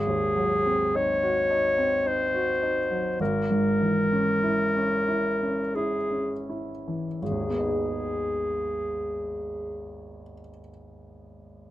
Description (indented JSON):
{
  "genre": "classical, romantic duo for clarinet and grand piano",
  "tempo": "39-55 BPM",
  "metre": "3/4",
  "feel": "rubato",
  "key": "G# minor",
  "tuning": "A4 = 437 Hz",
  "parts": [
    { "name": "bright clarinet", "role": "melody", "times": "0.0-10.2 s", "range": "G#4 to C#5", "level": "-25 LUFS", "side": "left 1 dB", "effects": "none" },
    { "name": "warm baby grand piano", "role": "accompaniment", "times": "0.0-11.7 s", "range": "G#1 to G#4", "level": "-28 LUFS", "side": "equal", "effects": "none" }
  ],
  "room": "little or no reverb",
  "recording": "close, detailed microphones",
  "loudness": "-24 LUFS",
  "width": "side -14 dB against mid",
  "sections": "0.0-7.2 A section; 7.2-11.3 B section",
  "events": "slowing down 0.0-7.2",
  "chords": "0.0 G#7; 3.2 C#m/G#; 7.2 G#m"
}